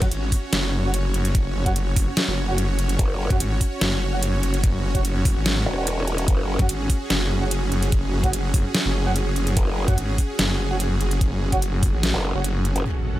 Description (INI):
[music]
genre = heavy wobble dubstep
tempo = 146 BPM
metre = 4/4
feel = half-time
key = unclear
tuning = A4 = 441 Hz
[part]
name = supersaw pad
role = sustained chords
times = 0.0-13.2 s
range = F#3 to F#5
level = -29 LUFS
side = right 1 dB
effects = sidechain pumping
[part]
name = mellow brass ensemble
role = stabs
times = 0.0-12.4 s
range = F#4 to F#5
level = -32 LUFS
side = right 3 dB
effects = dub echo
[part]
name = snarling distorted saw bass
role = bass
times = 0.0-12.7 s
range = F#1 to F#2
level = -23 LUFS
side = equal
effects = distortion, overdrive
[part]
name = dubstep drum kit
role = drums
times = 0.0-12.8 s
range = hi-hat, snare drum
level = -25 LUFS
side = equal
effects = low-pass filter on snare, low-pass filter on hats, low-pass filter on toms, low-pass filter on cymbals, low-pass filter on room
[part]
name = electronic kick drum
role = drums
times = 0.0-11.9 s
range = none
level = -21 LUFS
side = equal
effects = none
[part]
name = growl bass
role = bass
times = 3.0-6.6, 9.6-12.8 s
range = E1 to F#1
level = -24 LUFS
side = equal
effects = chorus, overdrive
[part]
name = impact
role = sound effects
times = 12.9-13.2 s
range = none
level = -27 LUFS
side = equal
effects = none
[sound]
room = digital ambience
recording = none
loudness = -20 LUFS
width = side -15 dB against mid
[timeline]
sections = 0.0-12.9 A section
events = drop 0.0-12.9; kick drops out 12.4-12.9; impact 12.9-13.2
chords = 0.0 F#5